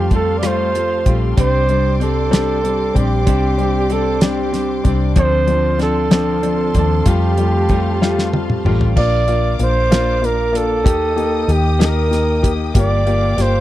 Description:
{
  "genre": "six-eight pop ballad",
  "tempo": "63 BPM (dotted quarters)",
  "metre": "6/8",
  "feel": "straight",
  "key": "unclear",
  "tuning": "A4 = 440 Hz",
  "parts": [
    { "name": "breathy flugelhorn", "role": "melody", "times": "0.0-13.6 s", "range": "G4 to D5", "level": "-19 LUFS", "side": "right 3 dB", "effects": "none" },
    { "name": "warm baby grand piano", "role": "accompaniment", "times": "0.0-13.6 s", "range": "F3 to G4", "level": "-20 LUFS", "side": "left 6 dB", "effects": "none" },
    { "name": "dark studio string section", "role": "sustained chords", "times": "0.0-13.6 s", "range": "Bb3 to Eb6", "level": "-28 LUFS", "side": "left 2 dB", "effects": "none" },
    { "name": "direct-recorded clean electric guitar", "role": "arpeggios", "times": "0.0-9.0 s", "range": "C3 to A4", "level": "-27 LUFS", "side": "right 12 dB", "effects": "none" },
    { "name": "vintage muted fingered electric bass", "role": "bass", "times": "0.0-13.6 s", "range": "G1 to F2", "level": "-19 LUFS", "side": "equal", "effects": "none" },
    { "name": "damped 70s drum kit", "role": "drums", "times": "0.1-13.5 s", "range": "crash cymbal, hi-hat, kick drum, rim click, snare drum, toms", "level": "-16 LUFS", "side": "equal", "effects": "none" }
  ],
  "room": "small room ambience",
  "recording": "dry, close 1970s-style studio recording",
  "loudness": "-14 LUFS",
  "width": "side -14 dB against mid",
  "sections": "0.0-9.0 A section; 9.0-13.6 B section",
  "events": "drum fill 8.0-9.0",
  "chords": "0.0 Fadd9; 1.4 Csus2; 5.2 Dm7; 7.1 Fadd9; 9.0 Bb; 10.9 Eb; 12.7 Gm7"
}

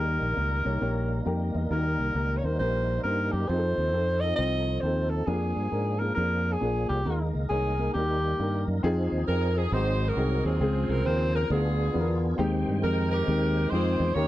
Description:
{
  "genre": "uptempo gospel",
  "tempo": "135 BPM",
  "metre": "4/4",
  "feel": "swing 64% on 8ths",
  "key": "Ab major",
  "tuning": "A4 = 441 Hz",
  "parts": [
    { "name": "warm alto saxophone", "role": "melody", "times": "0.0-8.6 s", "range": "G4 to Eb5", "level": "-29 LUFS", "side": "equal", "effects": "none" },
    { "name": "dark upright piano", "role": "accompaniment", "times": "0.0-14.3 s", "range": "Ab2 to G5", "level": "-30 LUFS", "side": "left 2 dB", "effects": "none" },
    { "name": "tonewheel organ", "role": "sustained chords", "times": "0.0-14.3 s", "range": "Db3 to G5", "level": "-35 LUFS", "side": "right 2 dB", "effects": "slow rotary speaker, overdrive, chorus vibrato" },
    { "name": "fingered electric bass", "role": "bass", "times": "0.0-14.3 s", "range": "Ab1 to Ab2", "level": "-28 LUFS", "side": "equal", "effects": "none" },
    { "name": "clear saxophone section", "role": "melody", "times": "9.3-14.3 s", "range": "B3 to Db5", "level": "-29 LUFS", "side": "right 1 dB", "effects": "slapback echo" }
  ],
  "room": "little or no reverb",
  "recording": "dry, close 1970s-style studio recording",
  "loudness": "-24 LUFS",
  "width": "side -15 dB against mid",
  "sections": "0.0-8.8 A section; 8.8-14.3 B section",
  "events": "upright piano fill 1.0-1.7",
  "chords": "0.0 Eb; 3.5 F7; 5.3 Bb7/F; 7.1 Ebsus4; 7.9 Eb; 8.8 Fm7; 9.7 Ab7; 10.6 Dbmaj7; 11.5 Ddim7; 12.4 Abmaj7/Eb"
}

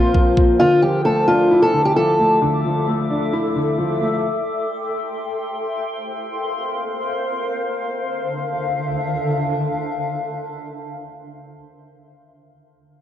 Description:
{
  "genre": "hip hop, trap",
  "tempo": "132 BPM",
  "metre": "4/4",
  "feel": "half-time",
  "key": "D minor",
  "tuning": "A4 = 442 Hz",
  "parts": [
    { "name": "fingerpicked acoustic archtop guitar", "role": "melody", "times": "0.0-2.4 s", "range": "F4 to A4", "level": "-16 LUFS", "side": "left 1 dB", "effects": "cassette tape, analog delay" },
    { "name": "dark grand piano", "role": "accompaniment", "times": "0.0-4.3 s", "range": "Bb2 to F4", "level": "-20 LUFS", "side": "equal", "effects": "cassette tape" },
    { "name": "granular cloud pad", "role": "sustained chords", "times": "0.0-11.1 s", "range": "D3 to D6", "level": "-24 LUFS", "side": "left 1 dB", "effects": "built-in reverb, cassette tape" },
    { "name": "electronic kick drum", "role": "drums", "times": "0.1-0.5 s", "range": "none", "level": "-16 LUFS", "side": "equal", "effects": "cassette tape" }
  ],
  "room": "light reverb, digital ambience",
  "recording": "home recording on cassette",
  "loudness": "-17 LUFS",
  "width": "side -11 dB against mid",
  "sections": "0.0-7.9 A section; 7.9-11.5 B section",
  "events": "break 0.0-0.6",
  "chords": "0.0 Bbsus2; 0.6 Dmadd9; 4.2 Am7; 6.1 Bbsus2; 7.9 Dmadd9"
}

